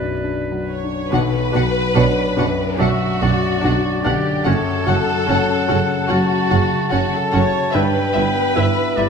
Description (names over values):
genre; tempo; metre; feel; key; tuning
cinematic, emotional film score for orchestra; 72 BPM; 4/4; rubato; B minor; A4 = 440 Hz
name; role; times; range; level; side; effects
clear oboe; second line; 0.0-9.1 s; B4 to A5; -24 LUFS; right 3 dB; none
concert flute; second line; 0.0-0.7 s; D5; -33 LUFS; left 4 dB; none
dark clarinet; second line; 0.0-0.8 s; F#4; -30 LUFS; equal; none
warm concert grand piano; accompaniment; 0.0-9.1 s; B1 to D5; -21 LUFS; left 3 dB; none
muted symphonic violin section; second line; 0.7-9.1 s; F#4 to C#5; -21 LUFS; left 3 dB; none
muted studio violin section; melody; 1.1-9.1 s; E5 to F#5; -28 LUFS; left 4 dB; none
muted symphonic viola section; accompaniment; 1.1-9.1 s; C#4 to F#5; -26 LUFS; right 1 dB; none
muted symphonic cello section; bass; 1.1-9.1 s; F#2 to B2; -24 LUFS; right 5 dB; none
muted symphonic double bass section; bass; 1.1-9.1 s; F#1 to B1; -24 LUFS; right 6 dB; none
room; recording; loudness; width
wet scoring stage reverb, RT60 1.8 s; none; -15 LUFS; side -6 dB against mid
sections
0.0-1.1 A section; 1.1-9.1 A section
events
none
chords
0.0 Bm; 1.1 Bmadd9; 4.5 F#m; 7.7 Em/G